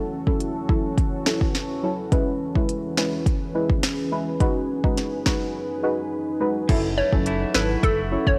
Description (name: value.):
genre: dancehall.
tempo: 105 BPM.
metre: 4/4.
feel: straight.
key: unclear.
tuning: A4 = 440 Hz.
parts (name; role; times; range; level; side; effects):
deep dark ambient pad; sustained chords; 0.0-8.4 s; E3 to C#6; -31 LUFS; equal; chorus, built-in reverb, sidechain pumping, cassette tape.
deep mellow chord stab; accompaniment; 0.3-8.3 s; F#3 to B4; -29 LUFS; equal; chorus, cassette tape.
afro-pop drum kit; drums; 0.3-8.4 s; crash cymbal, hi-hat, kick drum, snare drum; -25 LUFS; equal; cassette tape.
clean electric guitar; arpeggios; 6.7-8.4 s; F#2 to E4; -33 LUFS; equal; cassette tape, analog delay.
sub bass with octave; bass; 6.7-8.4 s; F#1 to G#1; -30 LUFS; equal; none.
hollow square pluck; melody; 7.0-8.4 s; A4 to C#5; -27 LUFS; equal; chorus, cassette tape.
room: light reverb.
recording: home recording on cassette.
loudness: -23 LUFS.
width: mono.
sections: 0.0-6.7 A section; 6.7-8.4 B section.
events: none.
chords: 0.0 F#m7; 2.1 C#m7; 4.4 G#m7; 6.7 F#m7.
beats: 0.40 0.98 1.55 | 2.12 2.69 3.26 3.83 | 4.40 4.98 5.55 6.12 | 6.69 7.26 7.83.